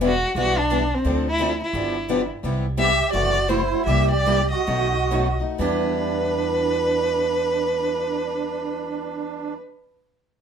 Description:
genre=acoustic string swing (jazz manouche)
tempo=122-174 BPM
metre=4/4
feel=swing 61% on 8ths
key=E minor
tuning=A4 = 443 Hz
part: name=picked steel-string acoustic guitar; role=accompaniment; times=0.0-9.6 s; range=B2 to A4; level=-28 LUFS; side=left 5 dB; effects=none
part: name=picked steel-string acoustic guitar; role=accompaniment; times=0.0-9.6 s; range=B2 to B4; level=-31 LUFS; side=right 6 dB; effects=none
part: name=upright bass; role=bass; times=0.0-9.5 s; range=E1 to E2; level=-27 LUFS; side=equal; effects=none
part: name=warm violin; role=melody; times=0.1-9.5 s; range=C4 to E5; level=-23 LUFS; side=right 1 dB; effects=none
part: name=musette accordion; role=second line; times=2.8-9.5 s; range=D4 to G4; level=-26 LUFS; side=right 7 dB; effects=none
room=moderate studio reverb, RT60 0.7 s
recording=minimal, uncompressed stereo recording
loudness=-20 LUFS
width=side -7 dB against mid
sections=0.0-2.4 A section; 2.4-5.6 B section; 5.6-9.5 C section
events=slowing down 2.4-5.6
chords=0.0 Em7; 1.1 Dm7; 1.7 G7; 2.4 Cmaj7; 3.1 F#m7b5; 3.9 C7; 4.7 B7; 5.6 Em7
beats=0.02 0.37 0.71 | 1.06 1.40 1.75 2.09 | 2.44 2.79 3.14 3.50 | 3.88 4.27 4.68 5.12 | 5.60 6.09 6.59 7.08 | 7.57 8.07 8.56 9.05

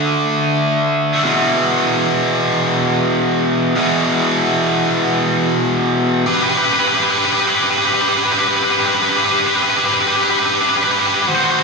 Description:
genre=rock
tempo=48 BPM (dotted quarters)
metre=6/8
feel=straight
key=unclear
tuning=A4 = 440 Hz
part: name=tight distorted guitar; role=solo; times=0.0-11.6 s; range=E2 to C5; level=-13 LUFS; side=equal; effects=distortion
room=wet concert hall reverb, RT60 1.9 s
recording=recorded in a church or concert hall, studio ambience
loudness=-13 LUFS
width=side -3 dB against mid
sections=0.0-6.3 A section; 6.3-11.6 B section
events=build-up 6.3-11.6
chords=0.0 D5; 1.2 E5; 6.3 G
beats=| 1.25 2.51 | 3.77 5.03 | 6.28 7.54 | 8.79 10.04 | 11.30

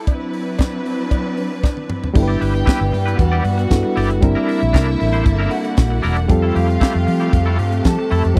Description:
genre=disco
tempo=116 BPM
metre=4/4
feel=straight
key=G major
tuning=A4 = 438 Hz
part: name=clear studio string section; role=sustained chords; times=0.0-8.4 s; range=C3 to B4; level=-27 LUFS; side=equal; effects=none
part: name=tight funk drum kit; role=drums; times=0.1-8.4 s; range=crash cymbal, hi-hat, kick drum, snare drum, toms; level=-18 LUFS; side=equal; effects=none
part: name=cowbell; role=percussion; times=0.1-1.8 s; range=none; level=-35 LUFS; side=equal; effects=none
part: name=overdriven reed electric piano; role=accompaniment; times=2.1-8.4 s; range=F#3 to B4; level=-24 LUFS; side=equal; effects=none
part: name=twangy electric guitar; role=accompaniment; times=2.1-8.4 s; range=A3 to D5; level=-28 LUFS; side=equal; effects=tremolo
part: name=clear studio string section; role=second line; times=2.2-8.4 s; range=E4 to A5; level=-27 LUFS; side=equal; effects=none
part: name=vintage muted fingered electric bass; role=bass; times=2.2-8.4 s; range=E1 to F3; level=-20 LUFS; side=equal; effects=none
room=small room ambience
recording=dry, close 1970s-style studio recording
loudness=-17 LUFS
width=mono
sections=0.0-2.2 A section; 2.2-8.4 B section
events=drum fill 1.6-2.2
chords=0.1 D13/F#; 2.2 G6; 4.2 C9/G; 6.3 Fmaj9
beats=| 0.07 0.59 1.11 1.63 | 2.15 2.67 3.19 3.71 | 4.22 4.74 5.26 5.78 | 6.30 6.82 7.33 7.85 | 8.37

